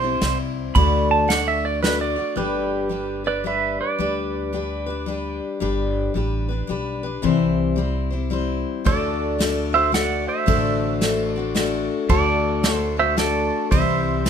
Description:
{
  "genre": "honky-tonk and classic country",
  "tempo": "111 BPM",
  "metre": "3/4",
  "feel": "swing 64% on 8ths",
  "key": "unclear",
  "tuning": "A4 = 439 Hz",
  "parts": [
    { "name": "pedal steel guitar", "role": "second line", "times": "0.0-5.4, 8.9-14.3 s", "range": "G4 to B5", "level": "-23 LUFS", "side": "right 6 dB", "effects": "none" },
    { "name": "picked steel-string acoustic guitar", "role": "accompaniment", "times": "0.0-14.3 s", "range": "C3 to D5", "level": "-23 LUFS", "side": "left 6 dB", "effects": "none" },
    { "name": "upright bass", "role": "bass", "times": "0.0-14.3 s", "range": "G1 to D2", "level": "-26 LUFS", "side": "right 1 dB", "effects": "none" },
    { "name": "unplugged drum kit", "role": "drums", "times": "0.2-2.0, 8.9-14.3 s", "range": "kick drum, ride cymbal, snare drum", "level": "-24 LUFS", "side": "right 1 dB", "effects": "none" }
  ],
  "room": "moderate studio reverb, RT60 0.6 s",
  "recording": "minimal, uncompressed stereo recording",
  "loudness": "-19 LUFS",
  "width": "side -8 dB against mid",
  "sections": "0.0-2.4 A section; 2.4-14.3 B section",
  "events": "pedal steel guitar solo 0.0-2.4, 2.4-14.3",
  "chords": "0.0 C; 0.8 D; 2.4 G; 7.2 C; 8.9 D; 13.7 C",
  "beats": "0.22 | 0.76 1.30 1.84 | 2.38 2.92 3.46 | 4.00 4.54 5.08 | 5.62 6.16 6.70 | 7.24 7.78 8.32 | 8.86 9.40 9.94 | 10.48 11.02 11.56 | 12.10 12.64 13.18 | 13.72 14.26"
}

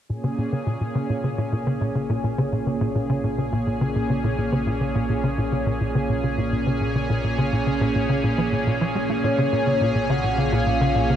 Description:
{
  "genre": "ambient, sequencer-driven space music",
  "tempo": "105 BPM",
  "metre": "4/4",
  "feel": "straight",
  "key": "Bb minor",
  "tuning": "A4 = 440 Hz",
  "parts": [
    { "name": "lush unison pad", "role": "sustained chords", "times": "0.1-11.2 s", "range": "Bb2 to Ab4", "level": "-24 LUFS", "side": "right 1 dB", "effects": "chorus" },
    { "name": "tight sequencer bass", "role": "riff", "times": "0.1-11.2 s", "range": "Bb2 to Bb3", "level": "-24 LUFS", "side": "equal", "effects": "ensemble chorus, analog delay" },
    { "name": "round analog bass", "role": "bass", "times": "0.1-11.2 s", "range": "Bb1", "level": "-33 LUFS", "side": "equal", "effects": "none" },
    { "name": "soft octave-layered synth lead", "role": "melody", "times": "9.2-11.2 s", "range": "Db5 to Gb5", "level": "-24 LUFS", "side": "left 1 dB", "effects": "chorus, phaser, vintage 12-bit sampler grit, analog delay" }
  ],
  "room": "wet huge ambient reverb, RT60 7.7 s",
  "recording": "none",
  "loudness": "-20 LUFS",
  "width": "side -10 dB against mid",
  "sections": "0.1-11.2 A section",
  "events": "fade-in on analog synth bass 0.1-11.2; filter sweep on analog synth bass 0.1-11.2",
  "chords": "0.1 Bbm7",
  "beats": "| 0.10 0.67 1.24 1.81 | 2.38 2.95 3.52 4.10 | 4.67 5.24 5.81 6.38 | 6.95 7.53 8.10 8.67 | 9.24 9.81 10.38 10.95"
}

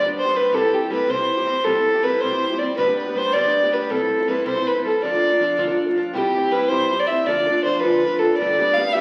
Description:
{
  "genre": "celtic folk, Celtic jig",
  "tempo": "107 BPM (dotted quarters)",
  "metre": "6/8",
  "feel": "straight",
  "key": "unclear",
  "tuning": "A4 = 440 Hz",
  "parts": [
    { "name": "dark fiddle", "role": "melody", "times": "0.0-9.0 s", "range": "G4 to F5", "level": "-21 LUFS", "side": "equal", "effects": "none" },
    { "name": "picked old ladder-braced acoustic guitar", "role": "accompaniment", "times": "0.0-9.0 s", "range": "G2 to A4", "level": "-26 LUFS", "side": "equal", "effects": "none" }
  ],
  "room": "wet large studio reverb, RT60 1.4 s",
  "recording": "very old 78 rpm record, vinyl crackle",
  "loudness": "-20 LUFS",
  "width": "mono",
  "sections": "0.0-6.1 A section; 6.1-9.0 B section",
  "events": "none",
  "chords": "0.0 G; 0.5 C; 2.8 G; 3.9 C6; 5.0 Dm; 6.1 C; 7.3 Dm; 8.4 G",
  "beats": "| 0.53 1.09 | 1.65 2.22 | 2.78 3.34 | 3.90 4.46 | 5.03 5.58 | 6.14 6.71 | 7.26 7.82 | 8.38 8.94"
}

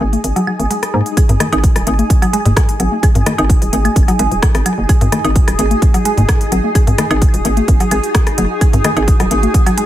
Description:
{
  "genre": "minimal techno",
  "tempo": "129 BPM",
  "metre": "4/4",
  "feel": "straight",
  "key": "unclear",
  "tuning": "A4 = 440 Hz",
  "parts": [
    { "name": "hollow knocking FM bass", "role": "bass", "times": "0.0-9.5 s", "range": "D#1 to G#2", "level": "-17 LUFS", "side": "equal", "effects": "sidechain pumping" },
    { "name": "booming analog drum machine", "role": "percussion", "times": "0.0-9.8 s", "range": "congas, rim click, toms, woodblock", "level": "-18 LUFS", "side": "left 2 dB", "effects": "ping-pong delay" },
    { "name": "granular cloud pad", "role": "texture", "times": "0.0-9.9 s", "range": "D#4 to D#6", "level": "-20 LUFS", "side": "right 2 dB", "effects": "built-in reverb, sidechain pumping" },
    { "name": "house drum kit", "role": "drums", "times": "0.1-9.9 s", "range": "hi-hat, rim click", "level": "-22 LUFS", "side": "right 1 dB", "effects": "none" },
    { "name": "mallet-like synth pluck", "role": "riff", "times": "0.4-9.8 s", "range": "D#3 to G#4", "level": "-20 LUFS", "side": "equal", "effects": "chorus, vintage 12-bit sampler grit, sidechain pumping, ping-pong delay" },
    { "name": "filtered dub chord stab", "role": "stabs", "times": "0.9-1.0 s", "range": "G#3 to G#4", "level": "-26 LUFS", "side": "left 4 dB", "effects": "phaser, cassette tape, ping-pong delay" },
    { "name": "electronic kick drum", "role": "drums", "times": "1.2-9.6 s", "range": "none", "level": "-12 LUFS", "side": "equal", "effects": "none" },
    { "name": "swarming drone", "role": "texture", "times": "2.4-9.9 s", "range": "F#4", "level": "-31 LUFS", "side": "right 2 dB", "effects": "none" }
  ],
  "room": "light reverb",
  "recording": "none",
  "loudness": "-11 LUFS",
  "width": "side -13 dB against mid",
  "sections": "0.0-1.2 A section; 1.2-9.9 B section",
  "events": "filter sweep on synth stab 0.0-1.2; drop 1.2-9.9",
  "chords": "0.0 G#5",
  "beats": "0.24 0.70 | 1.17 1.64 2.10 2.57 | 3.03 3.50 3.96 4.43 | 4.89 5.36 5.82 6.29 | 6.75 7.22 7.68 8.15 | 8.61 9.08 9.54"
}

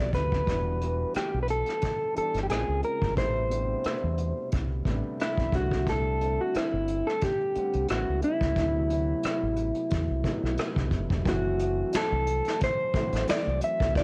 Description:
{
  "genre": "R&B, neo-soul",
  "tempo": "89 BPM",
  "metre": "4/4",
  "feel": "swing 54% on 16ths",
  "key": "unclear",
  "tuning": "A4 = 439 Hz",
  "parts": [
    { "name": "mellow electric guitar", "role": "melody", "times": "0.0-14.0 s", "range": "E4 to E5", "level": "-31 LUFS", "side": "equal", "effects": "cassette tape" },
    { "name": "warm grand piano", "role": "accompaniment", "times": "0.0-14.0 s", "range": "B2 to F#5", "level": "-38 LUFS", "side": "equal", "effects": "cassette tape, plate reverb" },
    { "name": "deep dub fingered electric bass", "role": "bass", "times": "0.0-14.0 s", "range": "E1 to E2", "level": "-33 LUFS", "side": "equal", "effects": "tube saturation" },
    { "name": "vintage brush drum kit", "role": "drums", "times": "0.1-14.0 s", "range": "finger snaps, hi-hat, kick drum, rim click, snare drum", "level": "-33 LUFS", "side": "equal", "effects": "cassette tape" }
  ],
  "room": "light reverb",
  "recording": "home recording on cassette",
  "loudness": "-28 LUFS",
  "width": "mono",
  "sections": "0.0-11.3 A section; 11.3-14.0 B section",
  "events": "none",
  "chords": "0.5 Em9; 2.5 A#m7; 3.2 Am7; 5.5 C6; 7.9 A9; 8.6 D13; 11.3 F#m7b5",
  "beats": "| 0.47 1.15 1.82 2.50 | 3.17 3.85 4.52 5.19 | 5.87 6.54 7.22 7.89 | 8.56 9.24 9.91 10.59 | 11.26 11.94 12.61 13.28 | 13.96"
}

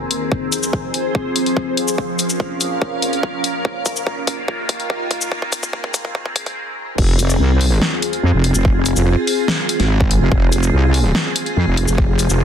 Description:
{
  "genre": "heavy wobble dubstep",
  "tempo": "144 BPM",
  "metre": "4/4",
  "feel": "half-time",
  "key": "F minor",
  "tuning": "A4 = 441 Hz",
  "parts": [
    { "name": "evolving wavetable pad", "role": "sustained chords", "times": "0.0-12.4 s", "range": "Eb2 to F5", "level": "-21 LUFS", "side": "equal", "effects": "ensemble chorus, built-in reverb, phaser, sidechain pumping" },
    { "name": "big-room dance drum kit", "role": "drums", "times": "0.1-12.4 s", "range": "crash cymbal, hi-hat, shaker, snare drum", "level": "-21 LUFS", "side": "left 2 dB", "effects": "none" },
    { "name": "electronic kick drum", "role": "drums", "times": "0.3-12.1 s", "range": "none", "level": "-18 LUFS", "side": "equal", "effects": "none" },
    { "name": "wobble bass", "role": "bass", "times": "7.0-12.4 s", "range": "F1 to F2", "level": "-15 LUFS", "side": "equal", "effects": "chorus, overdrive" }
  ],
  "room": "light reverb, digital ambience",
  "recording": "dense, heavily limited modern master, high-pass filter",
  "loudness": "-16 LUFS",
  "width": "side -8 dB against mid",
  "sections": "0.0-7.0 A section; 7.0-12.4 B section",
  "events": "build-up 0.0-7.0; filter sweep on ambient pad 0.0-7.0; filter sweep 0.0-7.0; drum fill 0.3-6.6; stop 6.6-7.0; drop 7.0-12.4",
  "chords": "0.3 Fm; 2.0 Bbm; 3.6 Ebsus2; 5.3 Abadd9/Eb; 7.0 Fm",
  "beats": "| 0.32 0.73 1.15 1.57 | 1.98 2.40 2.82 3.23 | 3.65 4.07 4.48 4.90 | 5.32 5.73 6.15 6.57 | 6.98 7.40 7.82 8.23 | 8.65 9.07 9.48 9.90 | 10.32 10.73 11.15 11.57 | 11.98 12.40"
}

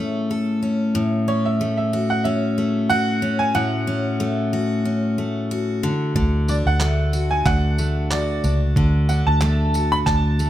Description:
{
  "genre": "acoustic pop",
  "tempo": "92 BPM",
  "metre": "4/4",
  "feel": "swing 55% on 16ths",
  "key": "unclear",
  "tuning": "A4 = 440 Hz",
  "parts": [
    { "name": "bright upright piano", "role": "melody", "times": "0.0-10.5 s", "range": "C#5 to B5", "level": "-24 LUFS", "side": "right 3 dB", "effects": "plate reverb" },
    { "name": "picked steel-string acoustic guitar", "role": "accompaniment", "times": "0.0-10.5 s", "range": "A2 to A4", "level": "-21 LUFS", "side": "left 1 dB", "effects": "none" },
    { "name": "vintage muted fingered electric bass", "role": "bass", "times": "6.2-10.5 s", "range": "C#2 to D2", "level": "-19 LUFS", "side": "equal", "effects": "none" },
    { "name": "dusty soul sampler-style drum kit", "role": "drums", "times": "6.2-10.5 s", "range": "handclaps, kick drum, tambourine", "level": "-24 LUFS", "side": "right 1 dB", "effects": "none" }
  ],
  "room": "little or no reverb",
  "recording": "close, detailed microphones",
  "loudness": "-18 LUFS",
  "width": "side -12 dB against mid",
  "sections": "0.0-10.5 A section",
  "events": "none",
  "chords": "0.0 A; 0.9 F#m/A; 5.8 D",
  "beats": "0.30 | 0.95 1.60 2.25 2.90 | 3.55 4.20 4.85 5.50 | 6.16 6.81 7.46 8.11 | 8.76 9.41 10.06"
}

